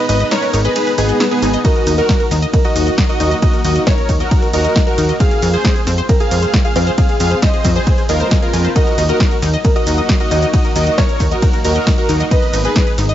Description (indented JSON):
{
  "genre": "uplifting trance",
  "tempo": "135 BPM",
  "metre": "4/4",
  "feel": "straight",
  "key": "Eb minor",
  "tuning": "A4 = 440 Hz",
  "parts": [
    { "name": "dense compressed supersaw", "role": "melody", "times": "0.0-12.9 s", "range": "Cb4 to F5", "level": "-20 LUFS", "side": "right 1 dB", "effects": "vintage 12-bit sampler grit, sidechain pumping, ping-pong delay" },
    { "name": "plucky unison lead", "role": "second line", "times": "0.0-12.9 s", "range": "Ab4 to F5", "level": "-25 LUFS", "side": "left 1 dB", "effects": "sidechain pumping, ping-pong delay" },
    { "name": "wide unison pluck", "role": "arpeggios", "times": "0.0-13.1 s", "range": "C4 to Ab5", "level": "-24 LUFS", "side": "left 3 dB", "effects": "sidechain pumping, ping-pong delay" },
    { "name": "plucky analog bass", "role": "bass", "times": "0.1-13.1 s", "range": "Ab1 to F2", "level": "-16 LUFS", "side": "equal", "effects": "sidechain pumping" },
    { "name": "punchy analog drum machine", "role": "drums", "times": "0.1-13.1 s", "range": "hi-hat, ride cymbal, shaker, snare drum", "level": "-23 LUFS", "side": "equal", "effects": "sidechain pumping on hats, small room ambience, sidechain pumping on perc, sidechain pumping on cymbals" },
    { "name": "felt-muted upright piano", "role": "second line", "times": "1.6-13.1 s", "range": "Ab4 to Eb5", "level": "-24 LUFS", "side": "right 1 dB", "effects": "ping-pong delay" },
    { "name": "electronic kick drum", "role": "drums", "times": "1.6-12.8 s", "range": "none", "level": "-15 LUFS", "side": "equal", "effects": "small room ambience" }
  ],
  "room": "little or no reverb",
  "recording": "nothing above 7.6 kHz",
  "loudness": "-12 LUFS",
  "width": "side -12 dB against mid",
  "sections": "0.0-13.1 A section",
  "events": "break 0.0-1.6",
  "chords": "0.0 Abm; 1.6 Ebm; 5.2 Fm; 8.8 Ebm; 12.3 Abm"
}